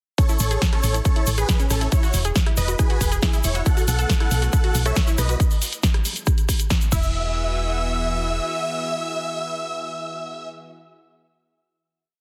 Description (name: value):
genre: uplifting trance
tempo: 138 BPM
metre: 4/4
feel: straight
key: E major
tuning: A4 = 437 Hz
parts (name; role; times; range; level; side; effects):
- big supersaw lead; melody; 0.2-10.5 s; C#4 to F#5; -29 LUFS; equal; sidechain pumping, tape echo
- unison pluck; arpeggios; 0.2-7.3 s; C#4 to A4; -34 LUFS; equal; sidechain pumping, delay
- electronic kick drum; drums; 0.2-7.0 s; none; -22 LUFS; equal; none
- punchy analog drum machine; drums; 0.2-7.0 s; crash cymbal, hi-hat, rim click, snare drum; -30 LUFS; equal; sidechain pumping on hats, sidechain pumping on cymbals
- egg shaker; percussion; 0.2-7.1 s; none; -34 LUFS; equal; none
- solid FM bass; bass; 0.4-8.4 s; E1 to B1; -25 LUFS; equal; sidechain pumping
- lush unison pad; sustained chords; 3.7-10.5 s; E3 to E5; -35 LUFS; equal; chorus, sidechain pumping
room: little or no reverb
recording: dense, heavily limited modern master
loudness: -22 LUFS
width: mono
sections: 0.2-7.1 drop; 7.1-10.6 final hit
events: drop 0.2-7.1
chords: 0.2 Amaj7; 1.9 E; 3.7 B7sus4; 5.4 N.C.; 6.9 Eadd9